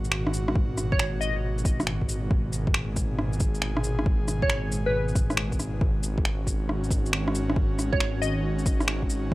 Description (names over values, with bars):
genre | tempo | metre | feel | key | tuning
future garage | 137 BPM | 4/4 | swing 67% on 16ths | G# minor | A4 = 441 Hz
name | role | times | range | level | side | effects
airy breathy pad | sustained chords | 0.0-9.3 s | A#2 to G#4 | -33 LUFS | equal | chorus, sidechain pumping
dark detuned saw bass | bass | 0.0-9.3 s | G#1 | -29 LUFS | equal | sidechain pumping
electronic shaker, finger snaps and rim click | drums | 0.0-9.2 s | none | -28 LUFS | equal | overdrive
electronic kick drum | drums | 0.6-9.3 s | none | -26 LUFS | equal | overdrive
glassy wavetable pluck | melody | 0.9-1.6, 4.4-5.2, 7.9-8.6 s | B4 to D#5 | -31 LUFS | equal | chorus, tape echo
room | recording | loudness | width
digital ambience | dry, gritty hardware recording | -23 LUFS | side -18 dB against mid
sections
0.0-9.3 A section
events
none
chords
0.0 G#m9; 5.8 D#m7/G#